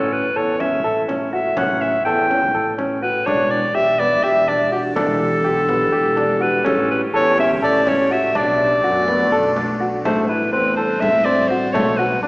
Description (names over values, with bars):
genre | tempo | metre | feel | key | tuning
contemporary instrumental, chamber music in an uneven meter | 248 BPM (eighths) | 7/8 | straight | unclear | A4 = 439 Hz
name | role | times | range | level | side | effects
bright clarinet | melody | 0.0-12.3 s | G4 to G5 | -18 LUFS | equal | none
warm grand piano | arpeggios | 0.0-12.3 s | A3 to A4 | -21 LUFS | equal | none
rich double bass | bass | 0.0-12.3 s | E1 to F#2 | -27 LUFS | right 1 dB | none
frame drum | percussion | 0.4-12.0 s | none | -30 LUFS | equal | none
evolving wavetable pad | sustained chords | 4.0-12.3 s | E3 to G4 | -25 LUFS | equal | phaser, built-in reverb
room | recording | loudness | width
wet concert hall reverb, RT60 2.3 s | recorded in a church or concert hall, small speaker sound | -15 LUFS | side -24 dB against mid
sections
0.0-10.1 A section; 10.1-12.3 B section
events
none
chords
0.0 A7; 3.3 Em7; 6.7 A7; 8.4 Bm7; 10.1 Am7; 11.8 Bm9